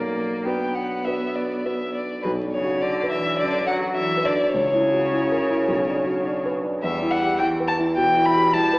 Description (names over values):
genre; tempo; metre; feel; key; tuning
quick classical-period movement for piano trio; 105 BPM; 4/4; rubato; B minor; A4 = 441 Hz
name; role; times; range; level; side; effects
warm violin; melody; 0.0-8.8 s; B4 to B5; -23 LUFS; left 1 dB; none
clear cello; second line; 0.0-8.8 s; B2 to B3; -28 LUFS; equal; none
dark concert grand piano; accompaniment; 0.0-8.8 s; B1 to B4; -24 LUFS; equal; none
room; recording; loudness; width
wet recital hall reverb, RT60 1.7 s; heard from further back in the room, vinyl crackle, AM radio sound; -20 LUFS; side -24 dB against mid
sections
0.0-2.2 A section; 2.2-8.8 B section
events
none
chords
0.0 Bm; 4.6 F#7/C#; 5.7 Bm; 6.8 Em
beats
0.45 1.05 1.65 | 2.24 2.82 3.40 3.98 | 4.55 5.12 5.69 6.26 | 6.83 7.40 7.97 8.54